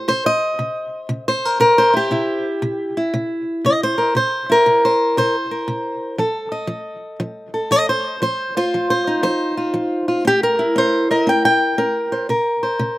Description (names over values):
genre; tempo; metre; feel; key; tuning
acoustic country blues, solo or duo; 118 BPM; 4/4; swing 67% on 8ths; C mixolydian; A4 = 444 Hz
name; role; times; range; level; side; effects
fingerpicked steel-string acoustic guitar; solo; 0.0-13.0 s; C3 to G5; -16 LUFS; equal; none
room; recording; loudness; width
little or no reverb; recorded outdoors, with no room sound; -16 LUFS; side -16 dB against mid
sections
0.0-13.0 A section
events
none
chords
0.0 C7; 6.2 F7; 10.2 C7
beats
| 0.07 0.58 1.09 1.60 | 2.11 2.62 3.13 3.63 | 4.14 4.65 5.16 5.67 | 6.18 6.69 7.20 7.71 | 8.21 8.72 9.23 9.74 | 10.25 10.76 11.27 11.77 | 12.28 12.79